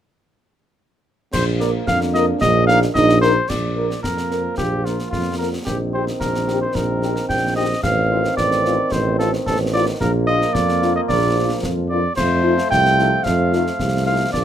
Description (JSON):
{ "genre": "military-style march for wind band", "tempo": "111 BPM", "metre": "2/4", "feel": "straight", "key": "Bb major", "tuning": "A4 = 440 Hz", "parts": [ { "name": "mellow cornet", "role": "melody", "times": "1.3-14.4 s", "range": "F4 to G5", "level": "-20 LUFS", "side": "equal", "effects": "none" }, { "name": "dark trombone section", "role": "sustained chords", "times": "1.3-14.4 s", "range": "Eb3 to C4", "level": "-25 LUFS", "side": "equal", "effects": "none" }, { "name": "mellow tuba", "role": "bass", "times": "1.3-14.4 s", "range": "A1 to F2", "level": "-20 LUFS", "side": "right 2 dB", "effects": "none" }, { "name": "concert snare drum, clash cymbals and concert bass drum", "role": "drums", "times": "1.3-14.4 s", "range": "none", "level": "-28 LUFS", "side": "left 1 dB", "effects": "none" }, { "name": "dark French horn section", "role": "accompaniment", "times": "1.6-14.2 s", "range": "A3 to Bb4", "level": "-24 LUFS", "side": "left 4 dB", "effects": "none" }, { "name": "mellow euphonium", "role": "second line", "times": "1.9-3.2 s", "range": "D4 to Eb4", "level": "-22 LUFS", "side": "right 3 dB", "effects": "none" } ], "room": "light reverb", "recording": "none", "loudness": "-16 LUFS", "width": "side -10 dB against mid", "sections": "1.3-3.5 A section; 3.5-14.4 B section", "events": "none", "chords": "1.3 Bb; 2.4 Eb5/Bb; 3.5 Bb; 5.7 Cm7/Bb; 7.8 F7/A; 10.0 Bb; 12.2 F7" }